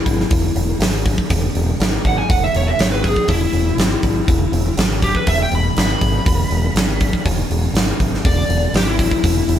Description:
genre	blues rock power trio and southern rock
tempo	121 BPM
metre	4/4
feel	straight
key	E mixolydian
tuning	A4 = 440 Hz
part	overdriven slide guitar	melody	0.0-9.6 s	E4 to B5	-21 LUFS	left 1 dB	none
part	growling picked electric bass	bass	0.1-9.6 s	E1 to G#1	-20 LUFS	equal	overdrive
part	huge arena drum kit	drums	0.1-9.6 s	hi-hat, kick drum, snare drum	-18 LUFS	equal	none
room	light reverb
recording	band playing live in one room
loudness	-15 LUFS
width	side -10 dB against mid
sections	0.0-9.6 A section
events	electric slide guitar solo 0.0-9.6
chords	0.0 E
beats	0.31 0.81 | 1.31 1.80 2.30 2.79 | 3.29 3.79 4.28 4.78 | 5.28 5.77 6.27 6.76 | 7.26 7.75 8.25 8.74 | 9.24

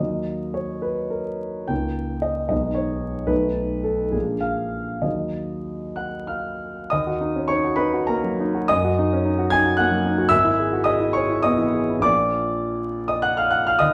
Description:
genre	classical, romantic character piece for solo piano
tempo	63-76 BPM (dotted quarters)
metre	6/8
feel	rubato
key	Eb minor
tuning	A4 = 438 Hz
part	clear concert grand piano	solo	0.0-13.9 s	G#1 to Ab6	-22 LUFS	equal	none
room	wet large studio reverb, RT60 0.9 s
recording	heard from further back in the room, vinyl crackle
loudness	-22 LUFS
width	mono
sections	0.0-6.9 A section; 6.9-13.9 A section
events	none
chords	0.0 Ebm; 1.7 Eb7/Db; 2.5 Abm/Cb; 3.3 B7; 4.1 Bb7; 5.0 Ebm; 8.7 Ebm/Gb; 10.3 E/G#; 12.0 Bb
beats	0.85 | 1.70 2.51 | 3.31 4.14 | 5.05 5.98 | 6.92 7.79 | 8.69 9.52 | 10.32 11.16 | 12.04 12.94 | 13.81

